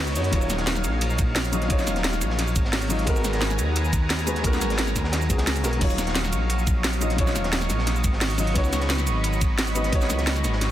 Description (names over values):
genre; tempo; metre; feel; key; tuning
liquid drum and bass; 175 BPM; 4/4; straight; Eb minor; A4 = 441 Hz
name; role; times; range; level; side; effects
dark baby grand piano; accompaniment; 0.0-10.7 s; Gb3 to Eb5; -29 LUFS; left 2 dB; tape echo
lush unison pad; sustained chords; 0.0-10.7 s; Gb3 to Db6; -31 LUFS; right 1 dB; chorus, sidechain pumping
dark detuned saw bass; bass; 0.0-10.7 s; Eb1 to Gb2; -26 LUFS; equal; none
crunchy breakbeat drum kit; drums; 0.1-10.7 s; hi-hat, ride cymbal, snare drum; -33 LUFS; equal; high-pass filter on cymbals, high-pass filter on hats, high-pass filter on snare, high-pass filter on room
drum and bass drum kit; drums; 0.1-10.7 s; cabasa, crash cymbal, hi-hat, snare drum; -27 LUFS; right 1 dB; none
electronic kick drum; drums; 0.3-10.0 s; none; -24 LUFS; equal; none
room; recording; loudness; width
light reverb, small room reverb; dense, heavily limited modern master; -21 LUFS; side -12 dB against mid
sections
0.0-10.7 A section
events
none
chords
0.3 Ebm9; 3.1 Abm9; 5.8 Ebm9; 8.6 Db9sus4